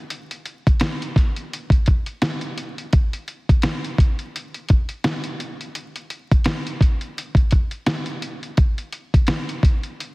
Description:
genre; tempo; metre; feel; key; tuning
hip hop; 85 BPM; 4/4; swing 57% on 16ths; none; none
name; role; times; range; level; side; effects
dusty soul sampler-style drum kit; drums; 0.1-10.1 s; hi-hat, kick drum, snare drum; -18 LUFS; equal; none
room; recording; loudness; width
light reverb; heavily compressed radio sound, multiband compression, vinyl crackle; -18 LUFS; side -24 dB against mid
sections
0.0-10.1 A section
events
none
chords
none

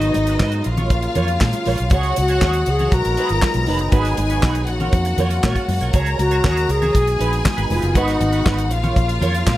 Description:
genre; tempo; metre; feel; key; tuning
disco; 119 BPM; 4/4; straight; F# major; A4 = 437 Hz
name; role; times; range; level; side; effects
mellow alto flute; melody; 0.0-8.7 s; D#4 to G#4; -22 LUFS; left 1 dB; none
clear symphonic string section; second line; 0.0-9.6 s; D#4 to A#5; -24 LUFS; left 2 dB; none
clean electric guitar; accompaniment; 0.0-9.4 s; D#4 to D#5; -26 LUFS; right 6 dB; wah, spring reverb
mellow French horn section; sustained chords; 0.0-9.6 s; C#3 to F#4; -29 LUFS; left 1 dB; none
vintage muted fingered electric bass; bass; 0.0-9.6 s; E#1 to A#2; -21 LUFS; equal; none
damped 70s drum kit; drums; 0.0-9.6 s; handclaps, hi-hat, kick drum, snare drum; -20 LUFS; equal; none
congas; percussion; 0.1-9.6 s; none; -28 LUFS; left 3 dB; none
room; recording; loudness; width
small room ambience; none; -16 LUFS; side -15 dB against mid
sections
0.0-9.6 A section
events
none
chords
0.0 G#m7; 0.6 F#maj7/A#; 1.9 C#sus4; 2.9 B6; 3.9 G#m7; 4.7 F#maj7/A#; 5.9 C#sus4; 6.9 B6; 8.0 G#m7; 8.7 F#maj7/A#

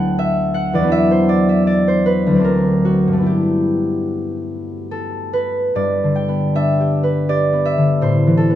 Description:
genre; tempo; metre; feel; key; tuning
classical, solo harp piece; 71-83 BPM; 3/4; rubato; G major; A4 = 440 Hz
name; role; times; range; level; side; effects
concert harp; solo; 0.0-8.6 s; D2 to B5; -14 LUFS; equal; none
room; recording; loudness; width
little or no reverb; close, detailed microphones; -14 LUFS; side -12 dB against mid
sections
0.0-5.7 A section; 5.7-8.6 B section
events
none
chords
0.0 D69; 0.9 Esus2; 2.5 Daug7; 3.3 G69; 5.7 G6; 8.0 Am9

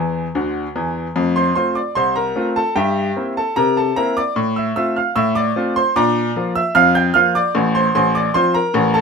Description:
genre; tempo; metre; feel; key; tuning
ragtime piano; 75 BPM; 2/4; straight; F major; A4 = 444 Hz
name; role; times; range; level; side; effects
bright baby grand piano; solo; 0.0-9.0 s; A1 to G6; -15 LUFS; equal; none
room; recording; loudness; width
light reverb; minimal, uncompressed stereo recording; -15 LUFS; side -5 dB against mid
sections
0.0-9.0 A section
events
grand piano fill 0.0-1.2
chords
0.0 C (rootless); 1.2 F; 2.8 C7/G; 4.4 F/A; 6.0 Bb; 7.5 F/A

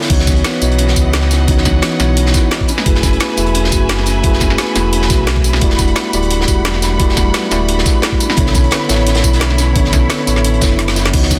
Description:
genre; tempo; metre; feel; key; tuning
liquid drum and bass; 174 BPM; 4/4; swing 53% on 16ths; unclear; A4 = 443 Hz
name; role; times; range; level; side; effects
mellow tine electric piano; accompaniment; 0.0-11.4 s; D3 to D5; -21 LUFS; equal; tape echo
felt-muted upright piano; arpeggios; 0.0-11.4 s; B3 to F#4; -26 LUFS; equal; tape echo
crunchy breakbeat drum kit; drums; 0.0-11.4 s; hi-hat, snare drum; -25 LUFS; equal; high-pass filter on hats, studio reverb, high-pass filter on snare, high-pass filter on room
clear studio string section; sustained chords; 0.1-11.4 s; E3 to B5; -25 LUFS; equal; vintage 12-bit sampler grit, sidechain pumping
sub bass with octave; bass; 0.1-11.4 s; D1 to C#2; -18 LUFS; equal; none
drum and bass drum kit; drums; 0.1-11.4 s; crash cymbal, hi-hat, snare drum, tambourine; -22 LUFS; equal; overdrive, studio reverb
electronic kick drum; drums; 0.1-11.4 s; none; -17 LUFS; equal; overdrive, studio reverb
room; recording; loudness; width
light reverb, small room ambience; dense, heavily limited modern master; -13 LUFS; mono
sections
0.0-11.1 A section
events
drop 0.0-11.1; kick drops out 10.8-11.1; drum fill 10.8-11.1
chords
0.1 C#m11; 2.7 F#m11; 5.6 Em11; 8.4 Bm11

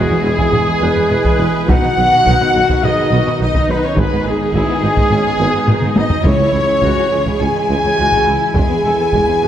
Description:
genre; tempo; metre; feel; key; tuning
cinematic, epic orchestral film score; 105 BPM; 4/4; straight; C# minor; A4 = 440 Hz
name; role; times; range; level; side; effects
clear symphonic violin section; melody; 0.0-9.5 s; G#4 to G#5; -24 LUFS; left 4 dB; none
concert flute; second line; 0.0-9.5 s; G#4 to G#5; -23 LUFS; left 2 dB; none
rich symphonic violin section; second line; 0.0-9.5 s; G#3 to E4; -28 LUFS; left 4 dB; none
rich symphonic viola section; accompaniment; 0.0-9.5 s; B3 to B4; -24 LUFS; right 1 dB; none
dark trombone section; sustained chords; 0.0-9.5 s; D#3 to B3; -24 LUFS; right 4 dB; none
warm French horn section; sustained chords; 0.0-9.5 s; G#3 to G#4; -22 LUFS; left 3 dB; none
mellow trumpet section; stabs; 0.0-9.5 s; G#4 to G#5; -18 LUFS; equal; none
rich studio cello section; bass; 0.1-9.5 s; C#2 to B2; -23 LUFS; right 2 dB; none
rich symphonic double bass section; bass; 0.2-9.5 s; E1 to C#2; -24 LUFS; right 2 dB; none
warm tuba; bass; 0.2-9.5 s; E1 to C#2; -24 LUFS; right 3 dB; none
taiko ensemble; drums; 0.4-9.5 s; none; -19 LUFS; left 1 dB; none
timpani; percussion; 6.3-7.1 s; C#3; -24 LUFS; equal; none
room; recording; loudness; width
wet scoring stage reverb, RT60 2.0 s; none; -12 LUFS; side -10 dB against mid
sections
0.0-9.5 A section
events
drum fill 5.7-6.2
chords
0.0 E; 1.7 B; 4.0 G#m; 6.2 C#m; 8.6 E

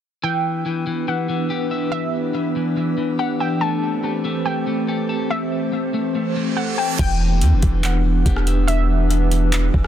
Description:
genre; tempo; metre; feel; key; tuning
hip hop, atmospheric cloud-rap; 142 BPM; 4/4; half-time; E minor; A4 = 440 Hz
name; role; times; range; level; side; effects
warbly dusty pluck; melody; 0.2-9.9 s; E5 to A5; -27 LUFS; equal; chorus, ping-pong delay
warbly tape-like pad; sustained chords; 0.6-9.9 s; E3 to C5; -23 LUFS; equal; chorus, built-in reverb, sidechain pumping
electric guitar at the edge of break-up; arpeggios; 0.2-9.9 s; E3 to A5; -26 LUFS; left 3 dB; ping-pong delay
reverse cymbal; sound effects; 6.3-7.0 s; none; -29 LUFS; right 7 dB; none
long sustained 808-style bass; bass; 7.0-9.9 s; E1 to E2; -17 LUFS; equal; none
smooth R&B drum kit; drums; 7.0-9.9 s; crash cymbal, handclaps, hi-hat, kick drum, rim click; -22 LUFS; equal; none
room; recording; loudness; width
digital ambience; dense, heavily limited modern master; -18 LUFS; side -10 dB against mid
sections
0.2-7.0 A section; 7.0-9.9 B section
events
reverse cymbal 6.3-7.0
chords
0.2 Em7; 3.6 Am7; 7.0 Em7

